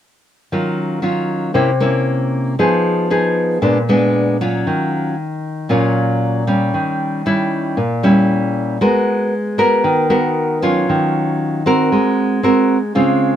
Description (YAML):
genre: bossa nova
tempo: 116 BPM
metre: 4/4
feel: straight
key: Eb minor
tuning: A4 = 441 Hz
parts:
  - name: nylon-string guitar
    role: accompaniment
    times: 0.5-13.4 s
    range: Bb2 to Bb4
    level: -14 LUFS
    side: equal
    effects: none
room: light reverb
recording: close, detailed microphones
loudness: -14 LUFS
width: side -10 dB against mid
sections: 0.5-4.7 A section; 4.7-13.4 B section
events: none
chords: 0.5 Ebm9; 1.5 C7b9; 2.6 Fm7b5; 3.6 Bb7b9; 4.7 Ebm9; 6.7 Eb7b9; 8.8 Abm9; 10.9 Ebm9; 11.9 Ab9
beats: | 0.51 1.03 1.55 2.06 | 2.58 3.10 3.62 4.14 | 4.66 5.17 5.69 6.21 | 6.73 7.25 7.77 8.28 | 8.80 9.32 9.84 10.36 | 10.88 11.39 11.91 12.43 | 12.95